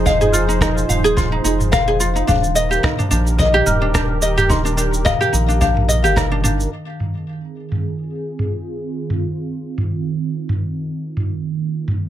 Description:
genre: folktronica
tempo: 108 BPM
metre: 4/4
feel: swing 56% on 16ths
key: F dorian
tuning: A4 = 439 Hz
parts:
  - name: warm analog pad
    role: sustained chords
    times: 0.0-12.1 s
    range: Eb3 to C5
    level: -24 LUFS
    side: right 3 dB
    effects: chorus
  - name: ukulele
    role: arpeggios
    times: 0.0-6.7 s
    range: D4 to F5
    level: -20 LUFS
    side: right 2 dB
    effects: digital delay, plate reverb
  - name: round analog bass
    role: bass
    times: 0.0-6.7 s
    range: Eb1 to Bb1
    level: -20 LUFS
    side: equal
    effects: none
  - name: marimba with medium mallets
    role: second line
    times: 0.1-5.9 s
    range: Eb5 to F6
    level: -23 LUFS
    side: left 5 dB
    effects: digital delay
  - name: kick drum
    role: drums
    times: 0.1-6.3 s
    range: none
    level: -22 LUFS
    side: equal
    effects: none
  - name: organic electronic drum kit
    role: drums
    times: 0.1-12.0 s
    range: rim click, shaker, toms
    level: -22 LUFS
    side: right 1 dB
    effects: low-pass filter on toms, low-pass filter on perc, low-pass filter on snare, low-pass filter on room
room: light reverb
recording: none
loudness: -16 LUFS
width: side -11 dB against mid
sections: 0.0-6.7 A section; 6.7-12.1 B section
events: band accent 6.2; filter sweep on analog synth pad 6.7-12.1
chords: 0.0 Fm7; 2.3 Ebmaj7; 6.7 Fm7; 11.2 Eb5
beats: | 0.06 0.61 1.17 1.72 | 2.28 2.83 3.39 3.95 | 4.50 5.06 5.61 6.17 | 6.72 7.28 7.83 8.39 | 8.95 9.50 10.06 10.61 | 11.17 11.72

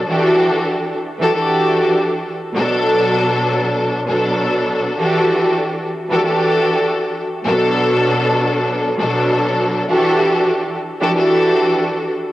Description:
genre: hip hop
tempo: 98 BPM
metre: 4/4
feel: swing 58% on 16ths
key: unclear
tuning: A4 = 440 Hz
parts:
  - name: clear studio string section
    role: solo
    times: 0.0-12.1 s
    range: B2 to A4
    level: -14 LUFS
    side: equal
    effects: high-pass filter, low-pass filter, cassette tape, analog delay
room: wet spring reverb, RT60 1.5 s, small room reverb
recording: home recording on cassette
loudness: -14 LUFS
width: side -15 dB against mid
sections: 0.0-12.3 A section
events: none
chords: 0.1 Em11; 2.6 Bm7; 5.0 Em11; 7.5 Bm7; 9.9 Em11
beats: | 0.11 0.72 1.33 1.95 | 2.56 3.17 3.78 4.39 | 5.01 5.62 6.23 6.84 | 7.46 8.07 8.68 9.29 | 9.90 10.52 11.13 11.74

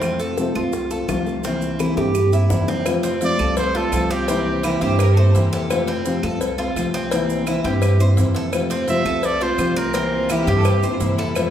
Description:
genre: latin, Cuban son and guajira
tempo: 169 BPM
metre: 4/4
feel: straight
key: F major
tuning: A4 = 440 Hz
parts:
  - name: nylon-string guitar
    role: accompaniment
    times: 0.0-11.5 s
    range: C3 to F4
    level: -22 LUFS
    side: left 2 dB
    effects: none
  - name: Cuban tres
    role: arpeggios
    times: 0.0-11.5 s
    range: C4 to C5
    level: -25 LUFS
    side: right 2 dB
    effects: none
  - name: upright bass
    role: bass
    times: 0.0-11.5 s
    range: C2 to G2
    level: -22 LUFS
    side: right 1 dB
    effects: none
  - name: bongos and cowbell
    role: percussion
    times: 0.0-11.5 s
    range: none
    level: -27 LUFS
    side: left 4 dB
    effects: none
  - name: claves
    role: percussion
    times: 0.0-11.5 s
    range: none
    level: -36 LUFS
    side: right 2 dB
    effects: none
  - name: maracas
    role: percussion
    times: 0.0-11.5 s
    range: none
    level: -38 LUFS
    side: right 6 dB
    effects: none
  - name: bright trumpet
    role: melody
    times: 3.2-4.8, 8.9-10.5 s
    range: G4 to E5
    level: -24 LUFS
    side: right 2 dB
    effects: none
  - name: clear chamber violin section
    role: second line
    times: 4.5-6.1, 10.1-11.5 s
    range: E4 to C5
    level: -30 LUFS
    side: left 2 dB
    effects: none
room: wet recital hall reverb, RT60 1.7 s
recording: recorded in a church or concert hall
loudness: -17 LUFS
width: side -10 dB against mid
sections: 0.0-2.9 A section; 2.9-11.5 B section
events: drum fill 2.0-2.9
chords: 0.0 F; 1.4 C7; 2.9 F; 4.3 C7; 5.7 F; 7.1 C7; 8.5 F; 9.9 C7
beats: | 0.02 0.38 0.73 1.09 | 1.44 1.80 2.15 2.51 | 2.86 3.22 3.57 3.93 | 4.28 4.64 4.99 5.34 | 5.70 6.05 6.41 6.76 | 7.12 7.47 7.82 8.18 | 8.53 8.88 9.24 9.59 | 9.95 10.30 10.65 11.01 | 11.36

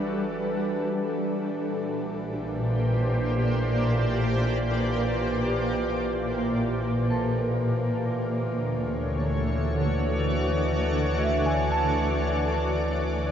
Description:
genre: ambient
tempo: free time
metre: none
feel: none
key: unclear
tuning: A4 = 442 Hz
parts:
  - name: shimmering ambient pad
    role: sustained chords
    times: 0.0-13.3 s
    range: A#2 to D5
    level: -25 LUFS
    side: equal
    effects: chorus, built-in reverb, shimmer reverb
  - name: clean electric guitar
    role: arpeggios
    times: 0.0-13.3 s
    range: F#4 to A5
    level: -34 LUFS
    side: right 2 dB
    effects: phaser, tape echo, shimmer reverb
  - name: deep rumbling drone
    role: bass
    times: 0.0-13.3 s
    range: G1 to D2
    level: -32 LUFS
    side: equal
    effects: built-in reverb, phaser
  - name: pedal harmonium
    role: drone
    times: 0.0-13.3 s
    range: E3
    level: -33 LUFS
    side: equal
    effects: none
room: wet cathedral reverb, RT60 5.9 s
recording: worn, warbling old tape, cassette tape, warbly pitch drift, nothing above 7.7 kHz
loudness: -24 LUFS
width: side -9 dB against mid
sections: 0.0-13.3 A section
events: fade-in on synth drone 0.0-13.3; fade-out 12.3-13.3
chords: 0.0 Gmaj7; 1.4 A#6; 7.9 Dmaj7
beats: free time

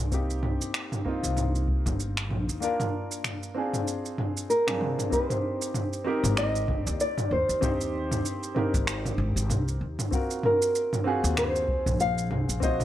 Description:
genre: sunset chillout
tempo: 96 BPM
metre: 4/4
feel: swing 57% on 16ths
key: Ab lydian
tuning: A4 = 441 Hz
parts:
  - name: dark baby grand piano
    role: accompaniment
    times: 0.0-12.8 s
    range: Bb3 to C5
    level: -31 LUFS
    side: left 1 dB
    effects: auto-pan, analog delay
  - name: upright bass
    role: bass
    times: 0.0-12.8 s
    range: G1 to Eb2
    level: -29 LUFS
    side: equal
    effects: none
  - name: deep house drum kit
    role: drums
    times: 0.1-12.8 s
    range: finger snaps, shaker, toms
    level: -30 LUFS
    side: equal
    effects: overdrive
  - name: electronic kick drum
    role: drums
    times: 0.1-12.8 s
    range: none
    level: -30 LUFS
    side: equal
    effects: none
  - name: nylon-string guitar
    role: melody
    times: 4.5-12.8 s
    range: Bb4 to F5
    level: -27 LUFS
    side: equal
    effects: analog delay
room: small room ambience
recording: dry, gritty hardware recording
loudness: -25 LUFS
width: side -12 dB against mid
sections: 0.0-5.1 A section; 5.1-12.8 B section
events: drum fill 4.7-5.1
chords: 0.1 Eb69; 2.6 Bb9; 3.9 Bb7; 5.1 Abmaj7; 9.8 Ebm6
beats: | 0.12 0.74 1.37 2.00 | 2.62 3.25 3.87 4.50 | 5.12 5.75 6.37 7.00 | 7.62 8.24 8.87 9.49 | 10.12 10.74 11.37 11.99 | 12.62

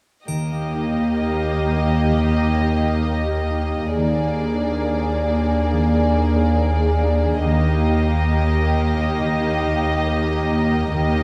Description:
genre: classical, slow romantic movement for symphony orchestra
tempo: 68 BPM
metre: 4/4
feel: uneven beats, rubato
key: Eb major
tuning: A4 = 440 Hz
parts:
  - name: warm studio violin section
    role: melody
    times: 0.3-11.2 s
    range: D5 to Eb5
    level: -28 LUFS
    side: equal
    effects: none
  - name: dark studio violin section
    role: second line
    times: 0.3-11.2 s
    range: G4 to Ab4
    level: -29 LUFS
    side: equal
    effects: none
  - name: warm studio viola section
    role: accompaniment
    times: 0.3-11.2 s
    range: Bb3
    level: -27 LUFS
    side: equal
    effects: none
  - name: concert harp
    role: arpeggios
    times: 0.3-11.2 s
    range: Eb3 to Bb4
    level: -29 LUFS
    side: equal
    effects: none
  - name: dark studio cello section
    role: bass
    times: 0.3-11.2 s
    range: Eb2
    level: -27 LUFS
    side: equal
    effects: none
  - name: dark studio double bass section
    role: bass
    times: 0.3-11.2 s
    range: Eb2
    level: -25 LUFS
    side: equal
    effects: none
  - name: triangle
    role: percussion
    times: 0.3-2.1 s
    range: none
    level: -41 LUFS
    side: equal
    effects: none
room: moderate scoring stage reverb, RT60 2.1 s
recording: dark, warm production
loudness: -20 LUFS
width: mono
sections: 0.3-11.2 A section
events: none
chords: 0.3 Eb; 4.0 Bb7/Eb; 7.5 Eb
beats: | 0.28 1.23 2.14 3.05 | 3.96 4.85 5.72 6.59 | 7.45 8.32 9.19 10.07 | 10.94

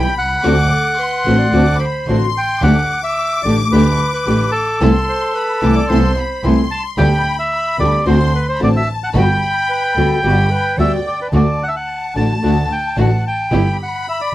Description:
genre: tango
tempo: 110 BPM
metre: 4/4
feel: rubato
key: unclear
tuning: A4 = 441 Hz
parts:
  - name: bandoneon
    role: melody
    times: 0.0-14.3 s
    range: A4 to A5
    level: -18 LUFS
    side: equal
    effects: none
  - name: warm studio violin section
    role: second line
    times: 0.0-14.3 s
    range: G5 to D6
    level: -24 LUFS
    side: left 5 dB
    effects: none
  - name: nylon-string guitar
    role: accompaniment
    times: 0.0-13.6 s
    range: C3 to G4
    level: -16 LUFS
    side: left 1 dB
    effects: none
  - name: rich chamber string section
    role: stabs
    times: 0.0-13.8 s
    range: G3 to A4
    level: -25 LUFS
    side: right 3 dB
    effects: none
  - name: rich double bass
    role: bass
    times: 0.0-13.7 s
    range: G1 to D2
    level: -17 LUFS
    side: right 1 dB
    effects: none
  - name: clear clarinet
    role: second line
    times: 0.7-11.3 s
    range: G4 to D5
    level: -24 LUFS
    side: right 3 dB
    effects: none
room: little or no reverb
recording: dry, close 1970s-style studio recording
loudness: -13 LUFS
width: side -15 dB against mid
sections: 0.0-11.3 A section; 11.3-14.3 B section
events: none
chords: 0.4 D7; 2.6 Dsus4; 4.8 Amadd9/C; 7.0 G/D; 8.1 D7; 9.2 Gmaj7; 11.3 D; 13.5 G6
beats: | 0.43 0.98 1.53 2.07 | 2.62 3.17 3.71 4.26 | 4.80 5.35 5.89 6.44 | 6.98 7.52 8.07 8.61 | 9.15 9.70 10.24 10.79 | 11.34 11.88 12.43 12.98 | 13.52 14.07

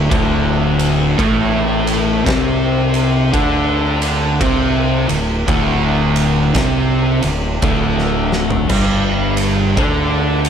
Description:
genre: stoner and doom metal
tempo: 56 BPM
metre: 4/4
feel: swing 63% on 8ths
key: unclear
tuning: A4 = 439 Hz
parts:
  - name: crunchy overdriven guitar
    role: riff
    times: 0.0-10.5 s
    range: D2 to D4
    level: -21 LUFS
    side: equal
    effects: none
  - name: thick fuzz guitar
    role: riff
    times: 0.0-10.5 s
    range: D2 to D4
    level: -20 LUFS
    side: left 8 dB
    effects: distortion
  - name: thick fuzz guitar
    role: riff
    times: 0.0-10.5 s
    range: D2 to D4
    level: -20 LUFS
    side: right 7 dB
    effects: distortion
  - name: growling fingered electric bass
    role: bass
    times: 0.0-10.5 s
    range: D1 to D2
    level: -20 LUFS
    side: equal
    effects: overdrive
  - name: oversized low-tuned drum kit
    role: drums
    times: 0.1-10.5 s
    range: crash cymbal, kick drum, ride cymbal, snare drum, toms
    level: -20 LUFS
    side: equal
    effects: none
room: light reverb, small room ambience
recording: none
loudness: -13 LUFS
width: side -8 dB against mid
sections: 0.0-10.5 A section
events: drum fill 8.2-8.7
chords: 0.0 D5; 8.7 G5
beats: | 0.10 1.18 2.26 3.33 | 4.41 5.48 6.55 7.62 | 8.70 9.77

